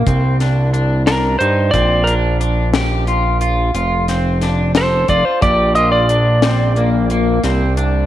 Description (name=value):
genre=progressive instrumental, band music in an uneven meter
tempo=179 BPM (eighths)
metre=11/8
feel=straight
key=Bb major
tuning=A4 = 440 Hz
part: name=electric guitar at the edge of break-up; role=arpeggios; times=0.0-8.1 s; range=Bb3 to A4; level=-20 LUFS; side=left 2 dB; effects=wide subtle chorus, tape echo
part: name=fat analog bass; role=bass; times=0.0-8.1 s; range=F1 to G2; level=-16 LUFS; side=right 1 dB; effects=none
part: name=deep reggae drum kit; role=drums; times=0.1-7.9 s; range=hi-hat, kick drum, snare drum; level=-20 LUFS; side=left 3 dB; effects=none
part: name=lightly driven lead guitar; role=melody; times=1.1-6.9 s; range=Bb4 to Eb5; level=-16 LUFS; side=right 1 dB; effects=none
room=moderate echo chamber reverb, RT60 1.9 s, studio reverb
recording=1960s-style stereo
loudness=-13 LUFS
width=side -12 dB against mid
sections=0.0-8.1 A section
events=lead electric guitar solo 0.0-8.1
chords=0.1 Cm; 1.7 Bb; 3.8 F; 5.4 Bb; 7.4 N.C.